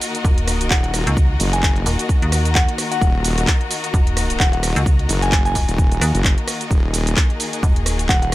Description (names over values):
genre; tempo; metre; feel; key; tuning
bass house; 130 BPM; 4/4; swing 57% on 16ths; Eb minor; A4 = 439 Hz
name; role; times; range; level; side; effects
muted chamber string section; sustained chords; 0.0-8.3 s; Eb3 to Ab4; -27 LUFS; left 4 dB; sidechain pumping
garage drum kit; drums; 0.0-8.3 s; handclaps, hi-hat, ride cymbal, rim click, shaker; -23 LUFS; right 1 dB; none
clear studio string section; texture; 0.0-8.3 s; Gb4 to Eb6; -29 LUFS; left 1 dB; sidechain pumping
metallic FM bass; bass; 0.2-8.1 s; Eb1 to Eb2; -19 LUFS; equal; tube saturation, sidechain pumping
electronic kick drum; drums; 0.2-8.2 s; none; -17 LUFS; equal; none
soft synth bell; melody; 0.7-8.3 s; Gb5 to Ab5; -26 LUFS; left 1 dB; chorus, dub echo
wobble bass; bass; 0.7-8.3 s; Eb1 to Gb1; -21 LUFS; equal; chorus, tube saturation, sidechain pumping
room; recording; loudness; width
little or no reverb; none; -15 LUFS; side -16 dB against mid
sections
0.0-8.3 A section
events
none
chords
0.0 Ebm